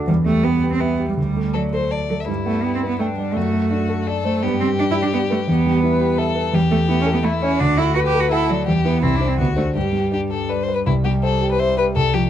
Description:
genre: quick classical-period movement for piano trio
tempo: 168 BPM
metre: 3/4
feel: straight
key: G major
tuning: A4 = 440 Hz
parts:
  - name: warm concert grand piano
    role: accompaniment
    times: 0.0-12.3 s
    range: C2 to A5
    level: -20 LUFS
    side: equal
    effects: none
  - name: rich cello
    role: second line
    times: 0.1-12.3 s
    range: F#3 to G4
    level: -22 LUFS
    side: right 4 dB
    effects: none
  - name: rich violin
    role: melody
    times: 0.4-12.3 s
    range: D4 to E5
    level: -24 LUFS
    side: left 6 dB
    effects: none
room: light reverb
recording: dark, warm production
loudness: -17 LUFS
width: side -10 dB against mid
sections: 0.0-2.3 A section; 2.3-10.9 B section; 10.9-12.3 A section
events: none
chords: 0.1 Em; 1.2 D; 2.3 G; 3.4 D7/F#; 4.4 G; 5.5 Em; 6.5 A7/E; 7.6 D; 8.7 Em; 9.0 Cadd9; 9.4 D7; 9.8 G; 10.9 C

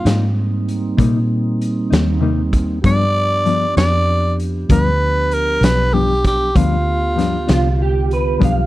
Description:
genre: slow blues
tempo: 65 BPM (dotted quarters)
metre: 12/8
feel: straight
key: unclear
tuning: A4 = 440 Hz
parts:
  - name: growling tenor saxophone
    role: melody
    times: 0.0-7.8 s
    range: F4 to D5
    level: -18 LUFS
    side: equal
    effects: none
  - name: mellow tonewheel organ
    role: sustained chords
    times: 0.0-8.7 s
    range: D3 to G4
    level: -24 LUFS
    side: right 2 dB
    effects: slow rotary speaker
  - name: vintage muted fingered electric bass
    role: bass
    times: 0.0-8.7 s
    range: B1 to Bb2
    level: -18 LUFS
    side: equal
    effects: none
  - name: mellow electric guitar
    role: accompaniment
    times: 0.1-8.6 s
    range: G2 to Eb4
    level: -19 LUFS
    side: left 5 dB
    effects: tremolo
  - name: raw garage drum kit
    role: drums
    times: 0.1-8.6 s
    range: hi-hat, kick drum, snare drum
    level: -19 LUFS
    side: equal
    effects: none
  - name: electric guitar through a small old amp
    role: second line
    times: 7.5-8.7 s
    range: F4 to F5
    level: -20 LUFS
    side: right 4 dB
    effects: ensemble chorus
room: little or no reverb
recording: dry, close 1970s-style studio recording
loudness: -14 LUFS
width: side -16 dB against mid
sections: 0.0-8.7 A section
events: none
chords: 0.0 Cm7; 2.8 G7

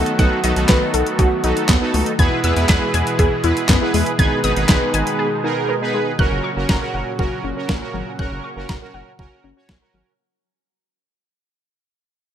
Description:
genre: synth-pop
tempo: 120 BPM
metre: 4/4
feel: straight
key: unclear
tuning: A4 = 441 Hz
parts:
  - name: analog synth brass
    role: accompaniment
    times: 0.0-10.1 s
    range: B3 to C#5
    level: -22 LUFS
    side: right 2 dB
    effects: chorus
  - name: brassy analog pad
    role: sustained chords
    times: 0.0-10.2 s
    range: A#2 to G#4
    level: -24 LUFS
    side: right 2 dB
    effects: chorus
  - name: warbly dusty pluck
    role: arpeggios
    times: 0.0-10.2 s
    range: F#3 to G#6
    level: -24 LUFS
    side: left 2 dB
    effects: chorus, ping-pong delay
  - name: rubbery square bass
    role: bass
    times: 0.0-10.0 s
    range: F#1 to F#2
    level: -22 LUFS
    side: equal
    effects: none
  - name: detuned 8-bit digital drum machine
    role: drums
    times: 0.1-9.8 s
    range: handclaps, hi-hat, kick drum, snare drum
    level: -18 LUFS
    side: equal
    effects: overdrive, gated reverb
room: moderate plate reverb, RT60 2.5 s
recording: bright 1980s-style digital production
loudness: -16 LUFS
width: side -10 dB against mid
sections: 0.0-6.2 A section; 6.2-10.2 B section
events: break 5.2-6.2; fade-out 6.2-10.2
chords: 0.0 B7; 2.2 E; 4.2 G#m; 6.2 F#

